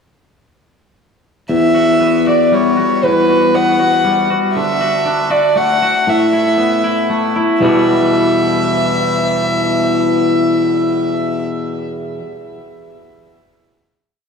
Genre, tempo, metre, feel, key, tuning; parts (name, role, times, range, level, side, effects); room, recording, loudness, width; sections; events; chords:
post-rock; 118 BPM; 3/4; straight; E minor; A4 = 443 Hz
warm violin; melody; 1.5-11.4 s; B4 to F#5; -16 LUFS; right 1 dB; tape echo
twangy electric guitar; arpeggios; 1.5-12.2 s; E2 to F#4; -14 LUFS; left 2 dB; tape echo
wet lush hall reverb, RT60 2.2 s; dreamy mix soaked in reverb, small room ambience; -12 LUFS; side -6 dB against mid
1.5-7.6 A section; 7.6-10.7 final chord
1.5 Emadd9; 4.6 D; 6.1 Asus2; 7.6 Emadd9